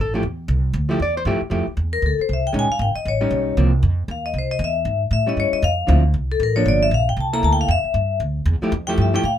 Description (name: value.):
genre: jazz, small-group swing and bop.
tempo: 233 BPM.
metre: 4/4.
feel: swing 61% on 8ths.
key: F major.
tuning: A4 = 441 Hz.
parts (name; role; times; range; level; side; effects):
vintage hollow-body jazz guitar; accompaniment; 0.0-9.2 s; D3 to D5; -22 LUFS; right 1 dB; none.
upright bass; bass; 0.0-9.4 s; G1 to A2; -20 LUFS; equal; none.
vibraphone with medium hard mallets; melody; 1.9-9.4 s; A4 to Bb5; -21 LUFS; left 4 dB; none.
room: light reverb.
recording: close, detailed microphones.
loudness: -17 LUFS.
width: side -10 dB against mid.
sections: 0.0-1.5 A section; 1.5-9.4 A section.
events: vibraphone solo 1.5-9.4.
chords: 0.0 Fmaj9; 2.5 Bbm7; 3.1 A7#11; 3.6 Cmadd11; 4.6 E; 5.1 A7; 5.6 Dm9; 6.7 Gm7; 7.2 C13; 7.7 Fmaj9.